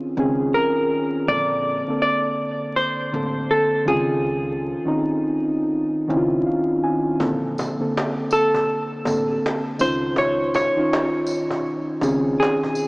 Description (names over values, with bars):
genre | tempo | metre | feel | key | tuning
lo-fi hip hop | 81 BPM | 4/4 | swing 65% on 16ths | unclear | A4 = 438 Hz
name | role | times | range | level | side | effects
muted felt-like synth keys | accompaniment | 0.0-12.9 s | D3 to G#5 | -22 LUFS | equal | chorus, cassette tape, low-pass filter
upright bass | bass | 0.2-12.3 s | A1 to C#2 | -33 LUFS | equal | none
vintage hollow-body jazz guitar | melody | 0.5-12.9 s | G#4 to D5 | -21 LUFS | equal | low-pass filter, tape echo
cajon | drums | 7.2-12.8 s | none | -29 LUFS | equal | none
tambourine | percussion | 7.6-12.9 s | none | -41 LUFS | equal | none
room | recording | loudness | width
wet huge ambient reverb, RT60 4.5 s | dreamy mix soaked in reverb, vinyl crackle, small speaker sound | -19 LUFS | side -26 dB against mid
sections
0.0-12.9 A section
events
synth keys fill 6.1-7.2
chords
0.0 C#maj9; 1.3 A#maj9; 3.9 C#maj9; 7.2 A#maj9; 9.8 C#maj9